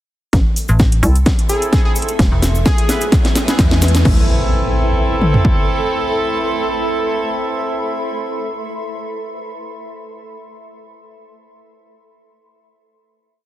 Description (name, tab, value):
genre	bass house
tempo	129 BPM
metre	4/4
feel	swing 54% on 16ths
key	A harmonic minor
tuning	A4 = 441 Hz
part	hollow knocking FM bass	bass	0.3-5.4 s	E1 to C2	-16 LUFS	equal	tube saturation, sidechain pumping
part	house drum kit	drums	0.3-5.6 s	kick drum, toms	-14 LUFS	equal	overdrive
part	house drum kit	drums	0.3-4.2 s	crash cymbal, hi-hat, snare drum	-20 LUFS	equal	overdrive
part	cabasa	percussion	0.3-4.0 s	none	-28 LUFS	left 2 dB	none
part	riser and impact	sound effects	2.0-8.7 s	none	-26 LUFS	equal	none
part	granular cloud pad	texture	1.6-8.5 s	E4 to C6	-24 LUFS	equal	built-in reverb, sidechain pumping
part	metallic FM bass	bass	0.7-4.0 s	E1 to E2	-14 LUFS	equal	overdrive, sidechain pumping
part	warm horn section	stabs	1.0-8.5 s	B3 to B4	-22 LUFS	right 2 dB	sidechain pumping, low-pass filter, digital delay
part	plucky unison lead	melody	1.5-3.1 s	G#4	-24 LUFS	equal	digital delay
room	light reverb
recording	heavily compressed radio sound, multiband compression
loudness	-13 LUFS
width	side -14 dB against mid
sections	0.3-4.1 build; 4.1-7.8 final chord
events	build-up 0.3-4.1; drum fill 0.3-4.1; filter sweep on horn section 0.3-4.1; riser 2.0-4.1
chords	0.3 Am; 2.2 E; 4.1 Am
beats	| 0.33 0.80 1.26 1.73 | 2.19 2.66 3.12 3.59 | 4.05 4.52 4.98 5.45 | 5.91 6.38 6.84 7.31